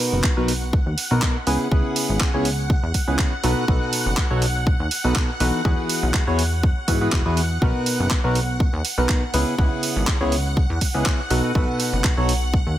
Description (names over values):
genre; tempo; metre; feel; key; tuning
piano house; 122 BPM; 4/4; swing 54% on 16ths; B major; A4 = 439 Hz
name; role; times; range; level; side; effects
string machine, violins; sustained chords; 0.0-12.8 s; F#5; -30 LUFS; equal; ensemble chorus, sidechain pumping
percussive organ stab; riff; 0.0-12.3 s; B2 to C#5; -24 LUFS; equal; lush chorus, sidechain pumping, tape echo
plucky analog bass; bass; 0.1-12.8 s; E1 to G#2; -23 LUFS; equal; tube saturation, sidechain pumping
electronic kick drum; drums; 0.2-12.6 s; none; -20 LUFS; equal; none
house drum kit; drums; 0.2-12.4 s; handclaps, hi-hat; -26 LUFS; right 2 dB; none
room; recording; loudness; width
small room ambience; none; -18 LUFS; side -13 dB against mid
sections
0.0-12.8 A section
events
none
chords
0.0 Bmaj7; 1.5 C#m7; 3.4 B7; 5.7 Eadd9; 7.6 Bmaj7; 9.3 C#m7; 11.3 B7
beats
0.24 0.73 1.22 | 1.72 2.21 2.70 3.19 | 3.68 4.17 4.67 5.16 | 5.65 6.14 6.63 7.12 | 7.62 8.11 8.60 9.09 | 9.58 10.08 10.57 11.06 | 11.55 12.04 12.54